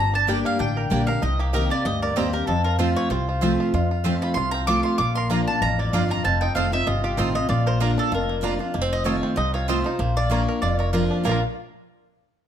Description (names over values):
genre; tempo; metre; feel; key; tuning
bluegrass; 192 BPM; 4/4; swing 55% on 8ths; Bb major; A4 = 440 Hz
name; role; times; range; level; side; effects
mandolin; melody; 0.0-11.4 s; G4 to D6; -26 LUFS; equal; none
picked steel-string acoustic guitar; accompaniment; 0.0-11.4 s; F2 to G4; -25 LUFS; left 1 dB; none
bluegrass banjo; arpeggios; 0.0-11.4 s; F3 to Bb4; -29 LUFS; right 1 dB; none
upright bass; bass; 0.0-11.4 s; F1 to F2; -25 LUFS; equal; none
mandolin; stabs; 0.3-11.4 s; Bb3 to Bb5; -32 LUFS; right 6 dB; none
room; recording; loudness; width
moderate large studio reverb, RT60 1.2 s; none; -20 LUFS; side -9 dB against mid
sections
0.0-8.7 A section; 8.7-11.3 B section; 11.3-12.5 C section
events
none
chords
0.0 Gm; 1.2 Cm7; 2.5 F; 5.0 Bb; 6.2 F7; 7.5 Bb; 8.7 F7; 10.0 Bb